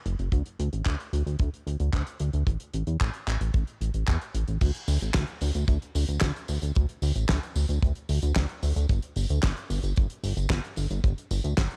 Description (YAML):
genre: italo disco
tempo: 112 BPM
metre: 4/4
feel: straight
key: unclear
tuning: A4 = 437 Hz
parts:
  - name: chorused synth bass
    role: bass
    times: 0.1-11.7 s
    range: F#1 to E2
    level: -29 LUFS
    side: equal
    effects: tube saturation
  - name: damped 70s drum kit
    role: drums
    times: 0.1-11.8 s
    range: crash cymbal, handclaps, hi-hat, snare drum, tambourine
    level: -35 LUFS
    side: equal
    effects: none
  - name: kick drum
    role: drums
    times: 0.3-11.7 s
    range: none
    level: -27 LUFS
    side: equal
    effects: none
room: little or no reverb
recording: dry, gritty hardware recording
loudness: -28 LUFS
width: mono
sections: 0.0-4.6 A section; 4.6-11.8 B section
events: none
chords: none